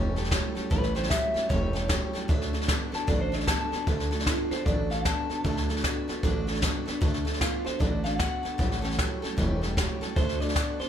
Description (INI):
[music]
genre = rockabilly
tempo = 152 BPM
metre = 4/4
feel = swing 63% on 8ths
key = D major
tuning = A4 = 440 Hz
[part]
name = picked steel-string acoustic guitar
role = accompaniment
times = 0.0-10.9 s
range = A2 to A4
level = -35 LUFS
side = left 3 dB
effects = none
[part]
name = electric guitar through a small old amp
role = riff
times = 0.0-10.9 s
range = A2 to B3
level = -35 LUFS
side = right 7 dB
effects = none
[part]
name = upright bass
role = bass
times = 0.0-10.8 s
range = E1 to D2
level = -30 LUFS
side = equal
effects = none
[part]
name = jazz brush drum kit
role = drums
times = 0.2-10.8 s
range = hi-hat, kick drum, snare drum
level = -28 LUFS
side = equal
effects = none
[part]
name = electric guitar through a small old amp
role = melody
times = 0.7-10.9 s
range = F4 to A5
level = -32 LUFS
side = left 1 dB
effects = tape echo
[sound]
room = little or no reverb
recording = none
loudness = -25 LUFS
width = side -9 dB against mid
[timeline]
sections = 0.0-3.9 A section; 3.9-10.9 B section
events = clean electric guitar solo 0.0-3.9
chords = 0.0 A7; 2.3 D; 8.6 A7; 10.2 D